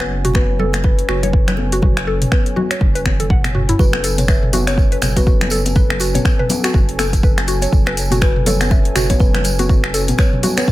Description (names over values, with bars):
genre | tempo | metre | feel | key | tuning
afro house | 122 BPM | 4/4 | swing 58% on 16ths | F# minor | A4 = 439 Hz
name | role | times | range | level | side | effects
warm analog pad | sustained chords | 0.0-10.7 s | F#3 to G#5 | -27 LUFS | right 1 dB | chorus, vintage 12-bit sampler grit, sidechain pumping
mallet-like synth pluck | arpeggios | 0.0-10.7 s | E4 to F#5 | -23 LUFS | equal | chorus, sidechain pumping, ping-pong delay
round analog bass | bass | 0.0-10.1 s | F#1 | -21 LUFS | equal | sidechain pumping
afro-pop drum kit | drums | 0.0-10.7 s | finger snaps, hi-hat, toms | -21 LUFS | equal | none
kalimba | melody | 0.3-10.7 s | A4 to E5 | -26 LUFS | left 1 dB | ping-pong delay
electronic kick drum | drums | 0.3-10.7 s | none | -14 LUFS | equal | none
congas | percussion | 0.3-10.7 s | none | -24 LUFS | left 2 dB | none
tambourine | percussion | 3.8-10.7 s | none | -28 LUFS | right 2 dB | none
room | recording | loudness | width
little or no reverb | none | -13 LUFS | side -16 dB against mid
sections
0.0-3.8 A section; 3.8-10.7 B section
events
drum fill 3.1-3.8; drop 3.8-10.7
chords
0.0 F#m